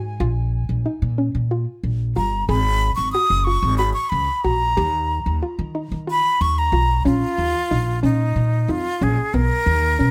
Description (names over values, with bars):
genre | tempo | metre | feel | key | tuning
progressive instrumental, band music in an uneven meter | 184 BPM (eighths) | 7/8 | straight | unclear | A4 = 442 Hz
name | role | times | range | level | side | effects
soft round pluck | arpeggios | 0.0-10.1 s | B3 to G#4 | -27 LUFS | equal | chorus
upright bass | bass | 0.0-10.1 s | F#1 to D#3 | -23 LUFS | equal | none
breathy jazz flute | melody | 2.2-10.1 s | D#4 to D#6 | -23 LUFS | equal | delay
room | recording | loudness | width
light reverb | none | -20 LUFS | mono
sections
0.0-7.1 A section; 7.1-10.1 B section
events
flute solo 0.0-7.1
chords
0.2 A#m; 2.5 F#maj9; 4.8 D#; 7.1 A#m; 9.3 Bmaj7